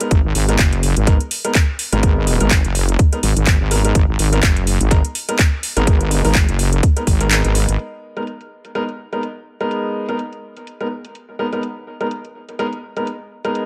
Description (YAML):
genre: bass house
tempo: 125 BPM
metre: 4/4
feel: swing 56% on 16ths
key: G# minor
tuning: A4 = 438 Hz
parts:
  - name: clear concert grand piano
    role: stabs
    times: 0.0-13.7 s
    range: G#3 to A#4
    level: -26 LUFS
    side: equal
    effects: sidechain pumping, tape echo
  - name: house drum kit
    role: drums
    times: 0.0-13.7 s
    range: handclaps, hi-hat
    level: -23 LUFS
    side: equal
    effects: overdrive, low-pass filter on hats, low-pass filter on snare, low-pass filter on room
  - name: wobble bass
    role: bass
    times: 0.1-7.8 s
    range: F#1 to G#1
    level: -19 LUFS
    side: equal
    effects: chorus, tube saturation, sidechain pumping
  - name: electronic kick drum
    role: drums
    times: 0.1-7.2 s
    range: none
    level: -17 LUFS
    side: equal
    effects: none
room: digital ambience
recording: none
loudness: -17 LUFS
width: mono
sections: 0.0-7.8 A section; 7.8-13.7 B section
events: drop 0.0-7.8; kick drops out 7.3-7.8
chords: 0.0 G#madd9